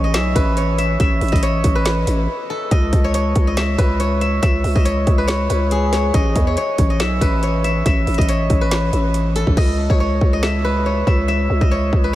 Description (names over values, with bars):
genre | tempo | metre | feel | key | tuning
hip hop, trap | 140 BPM | 4/4 | half-time | C# minor | A4 = 440 Hz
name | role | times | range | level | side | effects
steel-string zither | melody | 0.0-12.2 s | G#4 to E5 | -21 LUFS | left 1 dB | diffuse ambient delay
growling 808-style bass | bass | 0.0-12.2 s | A1 to E2 | -19 LUFS | equal | none
trap drum kit | drums | 0.1-12.0 s | crash cymbal, hi-hat, kick drum, snare drum | -19 LUFS | equal | none
room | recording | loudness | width
moderate huge ambient reverb, RT60 8.9 s | dreamy mix soaked in reverb | -15 LUFS | side -14 dB against mid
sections
0.0-9.6 A section; 9.6-12.2 B section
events
break 2.3-2.7; hi-hats muted 9.6-12.2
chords
0.0 A5; 2.7 C#m9; 6.1 A5; 9.6 C#m9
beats
0.14 0.57 | 1.00 1.43 1.86 2.29 | 2.71 3.14 3.57 4.00 | 4.43 4.86 5.29 5.71 | 6.14 6.57 7.00 7.43 | 7.86 8.29 8.71 9.14 | 9.57 10.00 10.43 10.86 | 11.29 11.71 12.14